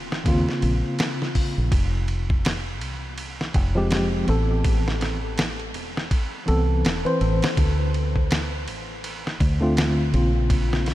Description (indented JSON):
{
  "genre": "trip hop",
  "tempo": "82 BPM",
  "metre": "4/4",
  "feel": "swing 59% on 16ths",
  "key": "unclear",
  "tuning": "A4 = 440 Hz",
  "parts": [
    { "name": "fingered electric bass", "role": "bass", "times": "0.0-10.9 s", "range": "E1 to Eb2", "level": "-24 LUFS", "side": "equal", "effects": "none" },
    { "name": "dusty soul sampler-style drum kit", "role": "drums", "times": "0.1-10.9 s", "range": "hi-hat, kick drum, ride cymbal, snare drum", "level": "-25 LUFS", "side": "equal", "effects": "none" },
    { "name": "tine electric piano", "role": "accompaniment", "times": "0.2-10.9 s", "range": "Db3 to C5", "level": "-26 LUFS", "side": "equal", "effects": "tremolo, tape echo" }
  ],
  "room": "light reverb, digital ambience",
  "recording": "none",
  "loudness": "-20 LUFS",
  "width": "side -15 dB against mid",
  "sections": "0.0-10.9 A section",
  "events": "none",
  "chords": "0.0 Bbmadd9; 1.7 Fmadd9; 4.6 Amadd9; 7.6 Dm7"
}